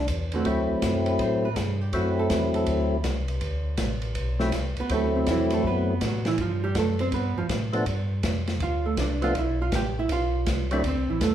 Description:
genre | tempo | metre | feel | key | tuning
soul jazz organ trio | 162 BPM | 4/4 | swing 65% on 8ths | D mixolydian | A4 = 439 Hz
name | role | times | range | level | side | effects
percussive tonewheel organ | melody | 0.0-10.8 s | F3 to E4 | -26 LUFS | left 1 dB | slow rotary speaker, overdrive
mellow tonewheel organ | bass | 0.0-11.3 s | A1 to A2 | -28 LUFS | left 1 dB | slow rotary speaker
open jazz drum kit | drums | 0.1-11.3 s | hi-hat, kick drum, ride cymbal, snare drum | -30 LUFS | equal | none
archtop guitar, miked and amplified | accompaniment | 0.3-11.3 s | C3 to G5 | -28 LUFS | right 4 dB | none
room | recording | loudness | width
wet large studio reverb, RT60 0.9 s | heard from further back in the room | -23 LUFS | side -10 dB against mid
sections
0.5-11.3 A section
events
hollow-body jazz guitar solo 0.5-11.3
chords
0.5 D7; 6.4 G7; 10.8 D7(no3)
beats
0.09 | 0.46 0.83 1.20 1.57 | 1.94 2.31 2.68 3.05 | 3.42 3.79 4.16 4.53 | 4.90 5.27 5.64 6.01 | 6.38 6.75 7.12 7.50 | 7.87 8.24 8.61 8.98 | 9.35 9.72 10.09 10.46 | 10.83 11.21

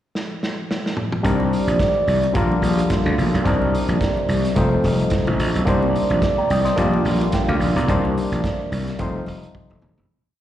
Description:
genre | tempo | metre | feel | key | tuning
disco | 108 BPM | 4/4 | swing 56% on 16ths | C dorian | A4 = 438 Hz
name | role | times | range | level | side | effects
vintage drum kit | drums | 0.2-10.1 s | hi-hat, kick drum, snare drum, toms | -25 LUFS | right 1 dB | none
auto-wah clav | accompaniment | 1.2-10.1 s | G3 to Bb5 | -24 LUFS | left 2 dB | overdrive, slapback echo
mellow French horn section | sustained chords | 1.2-10.1 s | C3 to D5 | -25 LUFS | right 3 dB | none
gritty slap bass | bass | 1.2-10.1 s | Eb1 to D2 | -20 LUFS | equal | overdrive
congas | percussion | 1.2-10.0 s | none | -28 LUFS | left 8 dB | slapback echo
room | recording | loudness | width
studio ambience | live gig heard through the venue's PA, recital hall reverb | -17 LUFS | side -12 dB against mid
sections
0.0-1.2 pickup bar; 1.2-10.1 verse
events
drum fill 0.1-1.2, 9.5-10.1; fade-out 7.9-10.1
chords
0.0 N.C.; 1.2 Cm9; 2.4 Bb6; 3.5 Cm9; 4.6 F7; 5.7 Cm9; 6.8 Bb6; 7.9 Cm9; 9.0 F7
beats
0.14 0.69 | 1.24 1.80 2.35 2.90 | 3.46 4.01 4.56 5.12 | 5.67 6.22 6.78 7.33 | 7.88 8.44 8.99 9.54

